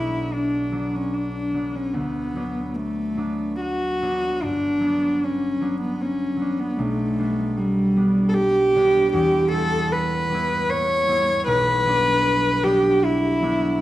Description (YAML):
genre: classical, romantic duo for cello and harp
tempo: 76 BPM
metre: 3/4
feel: rubato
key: B minor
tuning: A4 = 436 Hz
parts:
  - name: warm cello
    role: melody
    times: 0.0-13.8 s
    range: G3 to C#5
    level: -20 LUFS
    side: equal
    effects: none
  - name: concert harp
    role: accompaniment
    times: 0.0-13.8 s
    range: G1 to E4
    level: -25 LUFS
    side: right 1 dB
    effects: none
room: wet recital hall reverb, RT60 1.3 s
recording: dark, warm production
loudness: -19 LUFS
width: side -14 dB against mid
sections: 0.0-13.8 A section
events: none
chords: 0.0 Bm; 1.9 Bm/D; 4.4 Gmaj7; 6.8 G/B; 9.1 Em; 11.5 Bm